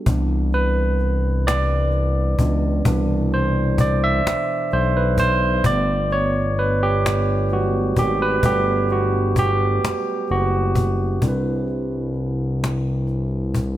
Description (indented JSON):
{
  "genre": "slow six-eight R&B",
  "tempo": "43 BPM (dotted quarters)",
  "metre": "6/8",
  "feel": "straight",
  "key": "C lydian",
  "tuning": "A4 = 444 Hz",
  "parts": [
    { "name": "barky tine electric piano", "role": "accompaniment", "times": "0.0-13.8 s", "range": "B2 to E5", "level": "-21 LUFS", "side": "right 2 dB", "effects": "overdrive" },
    { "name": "smooth synth bass", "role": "bass", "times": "0.1-13.8 s", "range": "F#1 to Db2", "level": "-21 LUFS", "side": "left 1 dB", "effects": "none" },
    { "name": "cajon", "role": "drums", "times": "0.1-13.8 s", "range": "none", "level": "-23 LUFS", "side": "left 1 dB", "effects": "none" }
  ],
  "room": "light reverb",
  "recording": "bright 1980s-style digital production",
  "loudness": "-18 LUFS",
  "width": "side -13 dB against mid",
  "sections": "0.1-11.2 A section; 11.2-13.8 B section",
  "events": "tine electric piano solo 0.1-11.2",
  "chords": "0.1 Cmaj9; 5.6 Gmaj9; 11.2 Cmaj9"
}